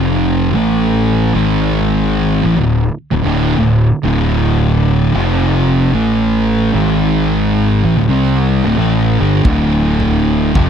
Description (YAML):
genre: stoner and doom metal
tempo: 89 BPM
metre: 4/4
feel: swing 63% on 8ths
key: D minor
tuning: A4 = 445 Hz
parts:
  - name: thick fuzz guitar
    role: riff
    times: 0.0-10.7 s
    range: D2 to C4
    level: -16 LUFS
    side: left 9 dB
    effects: distortion
  - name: thick fuzz guitar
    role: riff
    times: 0.0-10.7 s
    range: D2 to C4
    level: -15 LUFS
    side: right 8 dB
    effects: distortion
  - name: fuzz fingered electric bass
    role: bass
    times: 0.0-10.7 s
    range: D1 to C2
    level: -17 LUFS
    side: equal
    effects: overdrive
  - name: big rock drum kit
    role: drums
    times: 9.4-10.7 s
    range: kick drum, toms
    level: -16 LUFS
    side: equal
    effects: none
room: little or no reverb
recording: dry, close 1970s-style studio recording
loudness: -11 LUFS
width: side -8 dB against mid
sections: 0.0-10.7 A section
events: none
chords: 0.0 F5; 0.5 A5; 1.3 G#5; 2.4 D5; 5.1 F5; 5.9 A5; 6.7 G#5; 7.8 D5